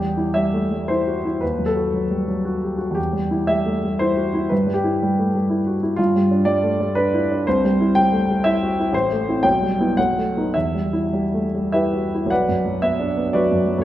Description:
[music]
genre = classical, romantic character piece for solo piano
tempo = 98-126 BPM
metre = 3/4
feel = rubato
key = E minor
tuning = A4 = 440 Hz
[part]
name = warm grand piano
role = solo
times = 0.0-13.8 s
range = A1 to G5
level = -18 LUFS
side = equal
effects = none
[sound]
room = moderate scoring stage reverb, RT60 1.7 s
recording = none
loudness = -18 LUFS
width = side -13 dB against mid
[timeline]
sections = 0.0-12.3 A section; 12.3-13.8 B section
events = none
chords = 0.0 Em; 1.4 D#dim; 3.0 Em; 4.5 Em/G; 6.0 G7; 7.5 C; 8.9 Am; 9.4 Em/B; 10.0 B7; 10.5 Em; 12.3 Bm

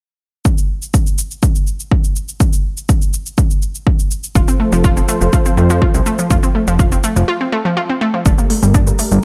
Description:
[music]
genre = melodic techno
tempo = 123 BPM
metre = 4/4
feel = straight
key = unclear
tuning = A4 = 439 Hz
[part]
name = electronic kick drum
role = drums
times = 0.5-8.8 s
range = none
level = -16 LUFS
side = equal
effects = overdrive
[part]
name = electronic shaker and hi-hat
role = drums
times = 0.5-9.2 s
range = none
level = -26 LUFS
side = equal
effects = overdrive
[part]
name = warm analog pad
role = sustained chords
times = 4.4-9.2 s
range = F3 to C5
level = -25 LUFS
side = equal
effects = chorus, sidechain pumping
[part]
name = analog pluck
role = arpeggios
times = 4.4-9.2 s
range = F3 to F4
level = -19 LUFS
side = equal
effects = chorus, cassette tape, sidechain pumping, tape echo
[part]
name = fat analog bass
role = bass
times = 4.4-9.2 s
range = F1 to F2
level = -17 LUFS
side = equal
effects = sidechain pumping
[sound]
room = little or no reverb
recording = none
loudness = -15 LUFS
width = mono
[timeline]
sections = 0.5-8.3 A section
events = break 7.3-8.3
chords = 0.5 N.C.; 4.4 F; 8.3 Gmadd9

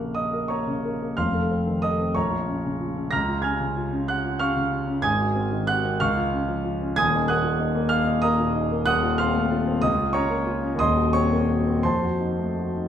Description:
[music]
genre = classical, romantic character piece for solo piano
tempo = 62 BPM (dotted quarters)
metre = 6/8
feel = uneven beats, rubato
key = Bb minor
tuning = A4 = 440 Hz
[part]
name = warm concert grand piano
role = solo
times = 0.0-12.9 s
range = Eb1 to Bb6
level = -21 LUFS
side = equal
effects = none
[sound]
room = wet recital hall reverb, RT60 1.6 s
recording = recorded in a church or concert hall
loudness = -21 LUFS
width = side -9 dB against mid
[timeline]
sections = 0.0-12.9 A section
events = none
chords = 0.0 Bbm; 1.2 F7; 2.1 Bbm; 3.1 Db; 5.0 Ab7; 6.0 Db; 7.0 Ebm; 8.9 F7/Eb; 9.8 Bbm/Db; 10.8 Cm7b5/Eb; 11.8 F7b9

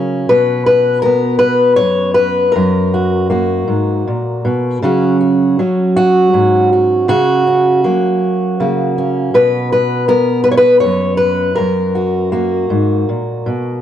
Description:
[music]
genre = folk, solo fingerstyle acoustic guitar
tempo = 53 BPM (dotted quarters)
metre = 6/8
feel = straight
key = F# major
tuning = A4 = 438 Hz
[part]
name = fingerpicked steel-string acoustic guitar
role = solo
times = 0.0-13.8 s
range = F#2 to C#5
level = -11 LUFS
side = equal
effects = none
[sound]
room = light reverb, studio ambience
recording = home recording on cassette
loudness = -11 LUFS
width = side -10 dB against mid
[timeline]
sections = 0.0-4.8 A section; 4.8-13.8 A section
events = none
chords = 0.3 B5; 2.5 F#; 4.8 C#sus4; 7.1 F#/C#; 9.3 B5; 11.6 F#

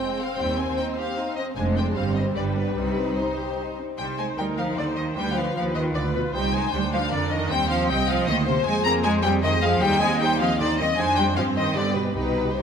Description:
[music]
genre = quick classical-period movement for string orchestra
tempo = 154 BPM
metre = 3/4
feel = straight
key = C minor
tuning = A4 = 443 Hz
[part]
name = rich chamber violin section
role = melody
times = 0.0-12.6 s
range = B4 to Bb5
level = -28 LUFS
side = left 4 dB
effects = none
[part]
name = dark chamber violin section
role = second line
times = 0.0-12.6 s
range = G3 to Bb5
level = -29 LUFS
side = left 2 dB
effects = none
[part]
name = rich studio viola section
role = accompaniment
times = 0.0-12.6 s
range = G3 to Eb5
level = -27 LUFS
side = equal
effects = none
[part]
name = clear chamber cello section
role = bass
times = 0.4-12.6 s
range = Eb2 to Bb3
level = -28 LUFS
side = right 2 dB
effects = none
[part]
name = rich chamber double bass section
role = bass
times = 0.4-12.6 s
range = F1 to G2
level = -28 LUFS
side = right 4 dB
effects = none
[sound]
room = wet concert hall reverb, RT60 2.6 s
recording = none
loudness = -21 LUFS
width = side -7 dB against mid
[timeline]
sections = 0.0-4.0 A section; 4.0-12.6 B section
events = none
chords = 0.4 Cm/Eb; 1.6 Dm7b5/F; 2.0 Cm/G; 2.4 G; 2.8 Cm; 5.2 G7/D; 6.3 Cm; 8.7 Fm; 9.8 Cm/Eb; 11.0 Dm7b5/F; 11.4 Cm/G; 11.8 G

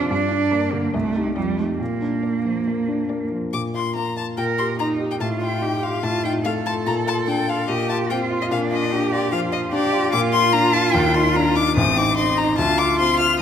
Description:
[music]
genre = quick classical-period movement for piano trio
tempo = 145 BPM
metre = 4/4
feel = rubato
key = Bb major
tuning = A4 = 438 Hz
[part]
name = clear cello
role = second line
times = 0.0-13.4 s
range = G3 to Bb4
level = -23 LUFS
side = right 4 dB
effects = none
[part]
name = warm baby grand piano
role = accompaniment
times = 0.0-13.4 s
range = A1 to G4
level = -22 LUFS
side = left 1 dB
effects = none
[part]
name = clear violin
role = melody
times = 0.5-13.4 s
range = Bb4 to F6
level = -22 LUFS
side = left 7 dB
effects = none
[sound]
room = wet scoring stage reverb, RT60 2.0 s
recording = none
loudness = -18 LUFS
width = side -8 dB against mid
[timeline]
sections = 0.0-3.5 A section; 3.5-13.4 B section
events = none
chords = 0.1 Gm; 0.9 Cm; 1.4 F9; 1.8 Bb; 3.5 Bb5; 4.4 Eb/Bb; 5.2 F7/A; 6.9 Bb; 7.7 F5/Bb; 8.5 Bb; 10.9 Ebmaj13; 11.8 Adim; 12.6 Dm7

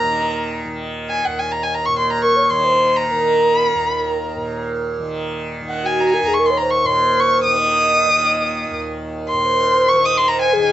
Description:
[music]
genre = indian classical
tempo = free time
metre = none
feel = none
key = Eb raga bhimpalasi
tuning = A4 = 440 Hz
[part]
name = dark violin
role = melody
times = 0.0-10.7 s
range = Gb5 to Eb6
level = -16 LUFS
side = equal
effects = none
[part]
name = tanpura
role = drone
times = 0.0-10.7 s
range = Eb2 to Eb3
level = -24 LUFS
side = right 2 dB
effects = none
[part]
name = mellow horn-like synth lead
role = second line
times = 2.2-10.7 s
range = Gb4 to Eb5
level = -19 LUFS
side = equal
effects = chorus
[sound]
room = moderate studio reverb, RT60 0.6 s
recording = nothing above 7.8 kHz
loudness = -15 LUFS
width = side -12 dB against mid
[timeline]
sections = 0.0-10.7 A section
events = none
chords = none

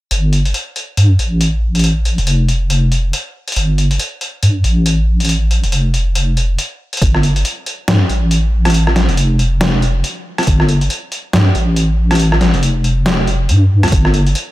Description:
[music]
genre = deep dubstep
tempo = 139 BPM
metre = 4/4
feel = swing 59% on 16ths, half-time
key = unclear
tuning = A4 = 440 Hz
[part]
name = deep soft wobble bass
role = bass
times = 0.1-14.3 s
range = F1 to G2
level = -12 LUFS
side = equal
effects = chorus
[part]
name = trip hop sampler-style drum kit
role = drums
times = 0.1-14.5 s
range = hi-hat, rim click, snare drum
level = -18 LUFS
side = equal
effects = none
[part]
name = electronic kick drum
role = drums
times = 7.0-7.1, 10.5-10.6, 13.9-14.0 s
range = none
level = -14 LUFS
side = equal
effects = none
[sound]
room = little or no reverb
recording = none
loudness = -12 LUFS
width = side -17 dB against mid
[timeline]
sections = 0.1-7.0 A section; 7.0-14.5 B section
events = none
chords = none

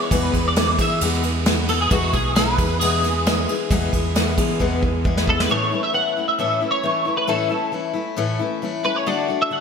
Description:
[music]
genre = folk rock and heartland rock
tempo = 134 BPM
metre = 4/4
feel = straight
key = A major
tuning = A4 = 440 Hz
[part]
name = twelve-string electric guitar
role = melody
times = 0.0-9.6 s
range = F#4 to F#5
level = -22 LUFS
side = right 1 dB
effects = ensemble chorus
[part]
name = picked steel-string acoustic guitar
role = accompaniment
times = 0.0-9.6 s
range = E2 to G#4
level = -23 LUFS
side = left 5 dB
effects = none
[part]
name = fingered electric bass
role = bass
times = 0.1-5.5 s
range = B1 to E3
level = -24 LUFS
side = right 1 dB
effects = none
[part]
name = soft brush drum kit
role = drums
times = 0.1-5.5 s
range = kick drum, ride cymbal, snare drum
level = -21 LUFS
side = right 1 dB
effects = gated reverb
[sound]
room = moderate lush hall reverb, RT60 1.9 s, studio ambience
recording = bright 1980s-style digital production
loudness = -18 LUFS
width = side -6 dB against mid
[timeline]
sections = 0.0-5.5 A section; 5.5-9.6 B section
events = drum fill 4.6-5.5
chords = 0.0 E; 5.5 A; 9.1 D

